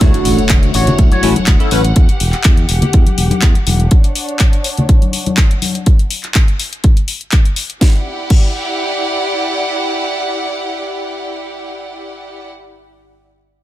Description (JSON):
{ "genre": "filtered disco house", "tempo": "123 BPM", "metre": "4/4", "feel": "swing 54% on 16ths", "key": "E dorian", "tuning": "A4 = 438 Hz", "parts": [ { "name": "funky polysynth comp", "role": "accompaniment", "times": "0.0-1.8 s", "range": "A3 to C#5", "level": "-18 LUFS", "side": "left 2 dB", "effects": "chorus, phaser, sidechain pumping, low-pass filter" }, { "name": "rich studio violin section", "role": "sustained chords", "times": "0.0-12.5 s", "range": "D4 to F#5", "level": "-21 LUFS", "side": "equal", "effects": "sidechain pumping, low-pass filter" }, { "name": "electric guitar with an envelope filter", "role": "riff", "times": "0.0-1.6 s", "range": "D4 to C#5", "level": "-22 LUFS", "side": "equal", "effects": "sidechain pumping, low-pass filter" }, { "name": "modern bright fingered electric bass", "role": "bass", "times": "0.0-3.9 s", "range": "E1 to E2", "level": "-16 LUFS", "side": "equal", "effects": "sidechain pumping, low-pass filter" }, { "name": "electronic kick drum", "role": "drums", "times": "0.0-8.5 s", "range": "none", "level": "-10 LUFS", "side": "equal", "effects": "none" }, { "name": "house drum kit", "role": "drums", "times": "0.0-8.5 s", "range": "crash cymbal, handclaps, hi-hat, snare drum", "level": "-20 LUFS", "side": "left 2 dB", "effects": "sidechain pumping on hats, sidechain pumping on cymbals" }, { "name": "tambourine and congas", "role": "percussion", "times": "0.0-5.8 s", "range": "none", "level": "-19 LUFS", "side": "left 2 dB", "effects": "sidechain pumping on perc, low-pass filter on perc" }, { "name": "impact", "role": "sound effects", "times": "0.0-2.0 s", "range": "none", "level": "-23 LUFS", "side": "equal", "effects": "none" } ], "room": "little or no reverb", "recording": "none", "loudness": "-11 LUFS", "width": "side -14 dB against mid", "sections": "0.0-7.8 A section; 7.8-11.7 B section", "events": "impact 0.0-2.0; filter sweep on fingered electric bass 0.0-3.9; filter sweep 0.0-7.8", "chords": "0.0 Dmaj7; 2.0 Emadd9; 3.9 Dmaj7; 5.9 N.C.; 7.8 Em9" }